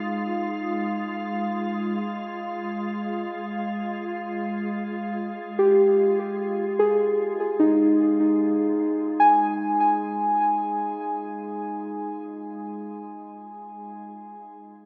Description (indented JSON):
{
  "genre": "ambient",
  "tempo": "free time",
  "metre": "none",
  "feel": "none",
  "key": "unclear",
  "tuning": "A4 = 440 Hz",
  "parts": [
    { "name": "muted felt-like synth keys", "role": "arpeggios", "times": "0.0-14.8 s", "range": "Eb4 to Ab5", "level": "-25 LUFS", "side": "equal", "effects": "chorus, delay" },
    { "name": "organ-like drone", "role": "drone", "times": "0.0-14.9 s", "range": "Ab3 to Ab4", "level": "-33 LUFS", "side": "equal", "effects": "ensemble chorus, built-in reverb" }
  ],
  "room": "wet concert hall reverb, RT60 2.2 s",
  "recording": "none",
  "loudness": "-24 LUFS",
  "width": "mono",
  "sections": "0.0-14.8 A section",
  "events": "fade-in on synth keys 0.0-14.8; fade-out on synth drone 0.0-14.8",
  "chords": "0.0 Ab5; 8.4 Fm/Ab"
}